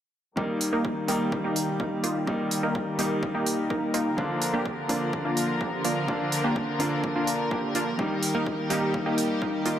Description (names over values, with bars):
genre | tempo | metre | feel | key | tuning
EDM, festival progressive house | 126 BPM | 4/4 | straight | Eb major | A4 = 440 Hz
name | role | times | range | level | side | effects
bright concert grand piano | accompaniment | 0.4-9.8 s | D3 to Eb4 | -30 LUFS | left 1 dB | sidechain pumping, digital delay
rich studio string section | sustained chords | 0.4-9.8 s | D3 to Bb4 | -31 LUFS | equal | sidechain pumping, low-pass filter
supersaw stab | riff | 0.4-9.8 s | Bb3 to Bb4 | -28 LUFS | equal | sidechain pumping, low-pass filter, digital delay
electronic kick drum | drums | 0.4-9.5 s | none | -34 LUFS | equal | high-pass filter on kick, high-pass filter on room
electronic hi-hat | drums | 0.6-9.8 s | none | -32 LUFS | right 2 dB | none
room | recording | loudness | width
moderate lush hall reverb, RT60 2.1 s | none | -24 LUFS | side -10 dB against mid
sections
0.4-9.8 A section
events
filter sweep on string section 0.4-9.8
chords
0.4 Eb; 4.2 Bb; 8.0 Eb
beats
| 0.37 0.85 1.32 1.80 | 2.27 2.75 3.23 3.70 | 4.18 4.66 5.13 5.61 | 6.08 6.56 7.04 7.51 | 7.99 8.46 8.94 9.42